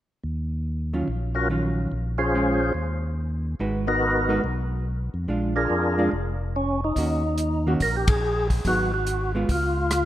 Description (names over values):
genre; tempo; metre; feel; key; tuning
soul jazz organ trio; 143 BPM; 4/4; swing 65% on 8ths; Eb minor; A4 = 440 Hz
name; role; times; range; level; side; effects
tonewheel organ; bass; 0.2-10.1 s; F1 to F2; -27 LUFS; equal; overdrive, chorus vibrato, slow rotary speaker
hollow-body jazz guitar; accompaniment; 0.9-9.5 s; Eb3 to Cb5; -29 LUFS; right 2 dB; none
percussive tonewheel organ; melody; 1.3-10.1 s; Cb4 to C5; -24 LUFS; equal; overdrive, chorus vibrato, slow rotary speaker
warm soul drum kit; drums; 7.0-10.0 s; hi-hat, kick drum, ride cymbal, rim click; -26 LUFS; equal; none
room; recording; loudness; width
moderate lush hall reverb, RT60 1.8 s, studio reverb; rough home demo mix; -22 LUFS; side -13 dB against mid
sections
0.2-7.0 A section; 7.0-10.1 B section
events
band accent 8.0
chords
0.2 Ebm9; 1.9 Bbm7; 2.8 N.C.; 3.6 Abm7; 5.3 Bb7; 7.0 Ebm7; 8.6 Abm7; 9.5 Db